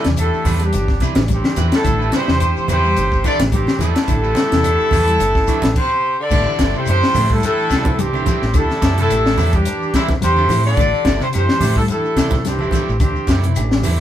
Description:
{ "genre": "afrobeat", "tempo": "108 BPM", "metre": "4/4", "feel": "swing 55% on 16ths", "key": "A dorian", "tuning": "A4 = 440 Hz", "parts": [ { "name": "mellow horn section", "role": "melody", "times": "0.0-13.4 s", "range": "E4 to D5", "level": "-19 LUFS", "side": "equal", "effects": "none" }, { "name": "growling baritone saxophone", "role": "second line", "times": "0.0-13.4 s", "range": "E2 to D3", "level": "-28 LUFS", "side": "left 3 dB", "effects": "none" }, { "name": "warm trumpet", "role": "second line", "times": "0.0-13.4 s", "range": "C4 to A4", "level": "-28 LUFS", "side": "right 3 dB", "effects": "none" }, { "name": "electric guitar at the edge of break-up", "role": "stabs", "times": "0.0-14.0 s", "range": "G3 to B4", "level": "-28 LUFS", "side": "right 6 dB", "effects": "none" }, { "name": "compact cocktail drum kit", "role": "drums", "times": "0.0-14.0 s", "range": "crash cymbal, hi-hat, kick drum, snare drum", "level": "-19 LUFS", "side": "left 1 dB", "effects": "none" }, { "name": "congas", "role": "percussion", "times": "0.0-14.0 s", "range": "none", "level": "-25 LUFS", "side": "right 3 dB", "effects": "none" }, { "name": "shekere", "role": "percussion", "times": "0.0-14.0 s", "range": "none", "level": "-31 LUFS", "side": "left 5 dB", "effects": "none" }, { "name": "overdriven tine electric piano", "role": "accompaniment", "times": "0.1-13.9 s", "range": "E3 to G4", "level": "-30 LUFS", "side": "right 3 dB", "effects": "phaser" }, { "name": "mellow electric guitar", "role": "arpeggios", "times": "0.1-13.9 s", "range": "C3 to G3", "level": "-27 LUFS", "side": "left 4 dB", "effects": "tremolo" }, { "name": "fingered electric bass", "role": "bass", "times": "0.1-14.0 s", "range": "G1 to A2", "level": "-19 LUFS", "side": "equal", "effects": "none" }, { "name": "claves", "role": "percussion", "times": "0.2-14.0 s", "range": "none", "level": "-36 LUFS", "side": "left 1 dB", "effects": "none" } ], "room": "moderate studio reverb, RT60 0.5 s", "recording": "band playing live in one room", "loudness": "-14 LUFS", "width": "side -11 dB against mid", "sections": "0.0-6.3 A section; 6.3-14.0 B section", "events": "stop 5.8-6.3", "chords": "0.0 Am9; 6.3 Am7" }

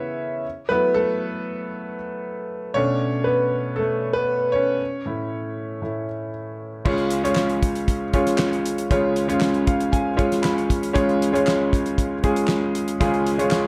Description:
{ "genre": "piano-driven pop", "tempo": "117 BPM", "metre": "4/4", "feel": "straight", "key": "unclear", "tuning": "A4 = 440 Hz", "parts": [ { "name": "clear baby grand piano", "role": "accompaniment", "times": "0.0-13.7 s", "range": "C#2 to B5", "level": "-23 LUFS", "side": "equal", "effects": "none" }, { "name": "damped 70s drum kit", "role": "drums", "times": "6.9-13.6 s", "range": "crash cymbal, handclaps, hi-hat, kick drum, snare drum", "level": "-26 LUFS", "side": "equal", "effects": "none" } ], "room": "moderate large studio reverb, RT60 0.9 s", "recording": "none", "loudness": "-22 LUFS", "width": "mono", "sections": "0.0-6.9 A section; 6.9-13.7 B section", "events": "grand piano solo 0.0-6.9; grand piano fill 9.4-11.0", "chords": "0.4 F#m7; 2.8 Bm7; 4.8 A; 6.9 C#" }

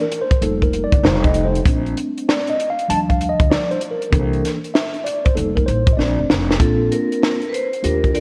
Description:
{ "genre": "hip hop, jazz-hop", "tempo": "97 BPM", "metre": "4/4", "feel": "swing 65% on 16ths", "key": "Bb major", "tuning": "A4 = 440 Hz", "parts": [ { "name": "mellow tine electric piano", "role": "accompaniment", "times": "0.0-8.2 s", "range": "E3 to A5", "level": "-23 LUFS", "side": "equal", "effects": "none" }, { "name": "compact cocktail drum kit", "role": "drums", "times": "0.1-8.2 s", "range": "hi-hat, kick drum, snare drum", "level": "-21 LUFS", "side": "equal", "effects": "none" }, { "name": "upright bass", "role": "bass", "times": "0.4-8.2 s", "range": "F1 to Eb2", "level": "-24 LUFS", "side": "equal", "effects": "none" }, { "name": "vibraphone with medium hard mallets", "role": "melody", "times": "6.6-8.2 s", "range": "A4 to D5", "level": "-24 LUFS", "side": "equal", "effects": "analog delay" } ], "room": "moderate echo chamber reverb, RT60 2.2 s", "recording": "worn, warbling old tape, cassette tape, warbly pitch drift", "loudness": "-18 LUFS", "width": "mono", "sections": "0.0-6.6 A section; 6.6-8.2 B section", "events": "tine electric piano solo 0.0-6.6; drum fill 6.0-6.6", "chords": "0.4 F7sus4; 1.0 F9; 1.7 Bbmaj7; 2.9 Ebmaj9#11; 4.1 C13; 5.4 F7sus4; 6.0 Bbmaj9; 6.6 Bb" }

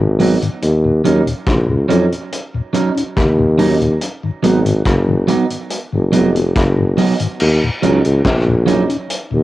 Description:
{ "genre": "roots reggae", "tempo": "71 BPM", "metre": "4/4", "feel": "straight", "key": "Eb minor", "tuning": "A4 = 441 Hz", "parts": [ { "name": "mellow tonewheel organ", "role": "accompaniment", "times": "0.0-9.4 s", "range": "Eb2 to Gb4", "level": "-21 LUFS", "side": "left 4 dB", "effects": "slow rotary speaker, cassette tape, analog delay" }, { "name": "warm tuba", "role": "bass", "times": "0.0-9.4 s", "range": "F1 to F2", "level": "-14 LUFS", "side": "left 1 dB", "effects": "none" }, { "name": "electric guitar at the edge of break-up", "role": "accompaniment", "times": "0.2-8.8 s", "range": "Gb3 to Eb4", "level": "-18 LUFS", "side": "right 4 dB", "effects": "spring reverb, cassette tape, dub echo, plate reverb" }, { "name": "vintage drum kit", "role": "drums", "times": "0.2-9.3 s", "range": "crash cymbal, hi-hat, kick drum, rim click, snare drum", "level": "-21 LUFS", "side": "left 1 dB", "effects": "cassette tape, analog delay" } ], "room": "moderate booth ambience, RT60 0.2 s", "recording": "home recording on cassette", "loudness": "-13 LUFS", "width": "side -15 dB against mid", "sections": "0.0-7.4 A section; 7.4-9.4 B section", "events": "none", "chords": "0.0 Abm7; 0.6 Ebm7; 4.0 Abm7; 7.4 Ebm7" }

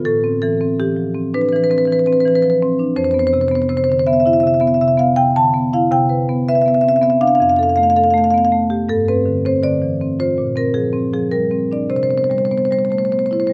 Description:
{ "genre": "classical, contemporary piece for solo marimba", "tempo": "81 BPM", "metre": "4/4", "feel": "rubato", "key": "C major", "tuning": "A4 = 445 Hz", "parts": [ { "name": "marimba with medium hard mallets", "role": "solo", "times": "0.0-13.5 s", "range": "F2 to A5", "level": "-16 LUFS", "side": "equal", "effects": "none" } ], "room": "light reverb", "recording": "close, detailed microphones", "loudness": "-16 LUFS", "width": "mono", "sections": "0.0-13.5 A section", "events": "none", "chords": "0.1 Amadd9; 3.0 F5; 5.9 Cmaj9; 7.4 Fadd9; 8.9 G7sus4; 10.4 Bbadd9; 11.9 Cmaj7" }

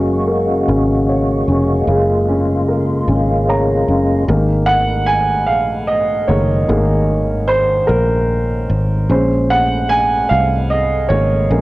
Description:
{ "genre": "pop", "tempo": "50 BPM (dotted quarters)", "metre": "6/8", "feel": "straight", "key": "unclear", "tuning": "A4 = 438 Hz", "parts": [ { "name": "dark upright piano", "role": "accompaniment", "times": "0.0-11.6 s", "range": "Db3 to Bb5", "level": "-15 LUFS", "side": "right 1 dB", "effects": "cassette tape" }, { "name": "percussive tonewheel organ", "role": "sustained chords", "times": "0.0-4.3 s", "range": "Db3 to Gb4", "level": "-17 LUFS", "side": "left 1 dB", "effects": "chorus vibrato, slow rotary speaker, cassette tape" }, { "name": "fingered electric bass", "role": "bass", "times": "0.0-11.6 s", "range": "F1 to C2", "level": "-18 LUFS", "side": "equal", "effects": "none" } ], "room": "moderate small room ambience, RT60 0.5 s", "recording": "home recording on cassette", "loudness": "-13 LUFS", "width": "side -18 dB against mid", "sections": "0.0-4.3 A section; 4.3-11.6 B section", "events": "upright piano fill 3.1-4.3; upright piano solo 4.3-11.6", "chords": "0.0 Gbadd9; 4.3 Absus2; 9.1 Bbm7" }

